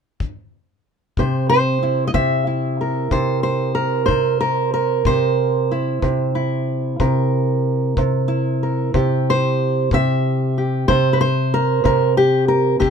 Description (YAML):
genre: acoustic country blues, solo or duo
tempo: 62 BPM (dotted quarters)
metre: 12/8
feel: straight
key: C mixolydian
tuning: A4 = 441 Hz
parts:
  - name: kick drum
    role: drums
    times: 0.2-12.9 s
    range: none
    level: -24 LUFS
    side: left 3 dB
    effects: none
  - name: fingerpicked steel-string acoustic guitar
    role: melody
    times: 1.2-12.9 s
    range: C3 to E5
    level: -16 LUFS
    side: right 1 dB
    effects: none
room: light reverb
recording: minimal, uncompressed stereo recording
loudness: -16 LUFS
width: side -6 dB against mid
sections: 0.0-1.2 A section; 1.2-12.9 B section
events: none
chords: 0.0 N.C.; 1.2 C7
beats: 0.19 | 1.17 2.14 3.11 4.08 | 5.05 6.03 7.00 7.97 | 8.94 9.91 10.88 11.85 | 12.82